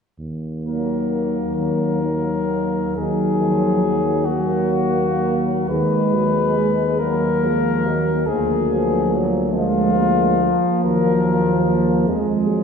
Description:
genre	classical, hymn-like piece for brass band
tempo	40-51 BPM (dotted quarters)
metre	6/8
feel	rubato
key	Eb minor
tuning	A4 = 443 Hz
part	mellow tuba	bass	0.2-12.6 s	D2 to F2	-24 LUFS	equal	none
part	mellow French horn section	second line	0.6-12.6 s	Gb3 to Bb3	-24 LUFS	right 4 dB	none
part	warm flugelhorn	melody	0.7-12.0 s	F4 to Cb5	-22 LUFS	left 5 dB	none
part	clear trombone section	accompaniment	0.7-12.6 s	Eb3 to Ab3	-23 LUFS	equal	none
part	mellow euphonium	accompaniment	0.7-12.6 s	Eb3 to Bb3	-27 LUFS	right 2 dB	none
room	wet recital hall reverb, RT60 1.7 s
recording	recorded in a church or concert hall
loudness	-17 LUFS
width	side -6 dB against mid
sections	0.2-3.0 A section; 3.0-12.6 B section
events	none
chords	0.2 Ebm; 5.7 Abm/Eb; 8.3 Bb7/D; 10.9 Ebm

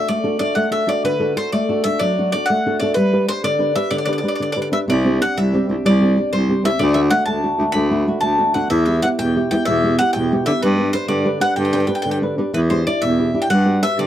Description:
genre	italian folk, Italian serenade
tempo	125 BPM (dotted quarters)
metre	6/8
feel	straight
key	G major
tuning	A4 = 441 Hz
part	bowl-back mandolin	melody	0.0-14.1 s	B4 to B5	-20 LUFS	left 1 dB	none
part	flamenco guitar	accompaniment	0.0-14.1 s	B2 to B4	-19 LUFS	equal	none
part	warm baritone saxophone	bass	4.9-14.1 s	C2 to D3	-20 LUFS	equal	none
room	little or no reverb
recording	dry, close 1970s-style studio recording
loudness	-16 LUFS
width	side -11 dB against mid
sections	0.0-12.5 A section; 12.5-14.1 B section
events	none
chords	0.0 D; 3.0 G; 4.9 Csus2; 6.8 D; 8.7 Em; 10.6 G; 12.5 Em7; 13.5 Gmaj7

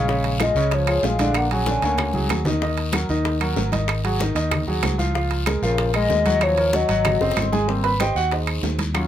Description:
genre	Afro-Cuban jazz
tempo	190 BPM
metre	4/4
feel	straight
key	unclear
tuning	A4 = 441 Hz
part	hollow clarinet-like synth lead	melody	0.0-2.4, 5.6-7.5 s	Bb4 to Ab5	-22 LUFS	left 3 dB	chorus, plate reverb
part	warm trombone	second line	0.0-2.4, 5.6-7.5 s	Db3 to C#4	-29 LUFS	left 4 dB	none
part	warm grand piano	accompaniment	0.0-9.1 s	Db3 to Cb6	-24 LUFS	right 2 dB	none
part	fingered electric bass	bass	0.0-9.1 s	Gb1 to Eb2	-24 LUFS	equal	none
part	bongos	percussion	0.1-9.1 s	none	-31 LUFS	left 6 dB	none
part	congas	percussion	0.1-9.1 s	none	-29 LUFS	left 1 dB	none
part	guiro	percussion	0.1-9.1 s	none	-35 LUFS	left 4 dB	none
part	timbales	percussion	0.2-9.1 s	none	-29 LUFS	right 10 dB	none
part	claves	percussion	0.4-9.1 s	none	-30 LUFS	right 1 dB	none
room	light reverb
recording	none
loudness	-18 LUFS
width	side -11 dB against mid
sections	0.0-7.7 A section; 7.7-9.1 B section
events	drum fill 2.1-2.6, 7.2-7.7; grand piano solo 7.7-9.1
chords	0.1 Bbm7; 1.4 Bb7alt; 2.6 Ebm; 3.9 Ab5; 5.2 Db6; 5.8 Bb5; 6.4 Ebm9; 7.1 Ab7; 7.7 Abmaj7

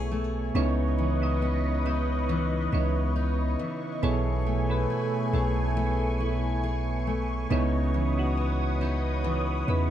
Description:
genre	contemporary R&B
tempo	69 BPM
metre	4/4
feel	swing 54% on 16ths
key	C# minor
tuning	A4 = 440 Hz
part	soft electric-piano-like synth keys	accompaniment	0.0-9.9 s	B2 to D#5	-29 LUFS	right 4 dB	chorus, tremolo
part	lush unison pad	sustained chords	0.0-9.9 s	A3 to D#6	-34 LUFS	equal	chorus, phaser
part	picked steel-string acoustic guitar	arpeggios	0.0-9.9 s	B2 to G#4	-33 LUFS	left 4 dB	digital delay
part	long sustained 808-style bass	bass	0.0-9.9 s	B1 to E2	-28 LUFS	equal	none
room	light reverb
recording	dark, warm production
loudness	-24 LUFS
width	side -11 dB against mid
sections	0.0-9.9 A section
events	synth keys fill 9.7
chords	0.0 B13sus4; 0.5 C#m9; 4.0 B13sus4; 7.5 C#m9

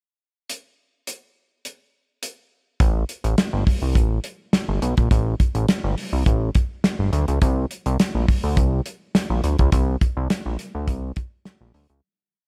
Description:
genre	early-eighties boogie funk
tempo	104 BPM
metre	4/4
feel	straight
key	unclear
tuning	A4 = 440 Hz
part	damped 70s drum kit	drums	0.5-12.0 s	hi-hat, kick drum, snare drum	-23 LUFS	equal	none
part	fat analog bass	bass	2.8-12.0 s	G1 to D2	-23 LUFS	equal	none
room	light reverb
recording	none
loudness	-22 LUFS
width	mono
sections	0.5-2.8 pickup bar; 2.8-12.0 verse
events	fade-out 9.7-12.0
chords	none

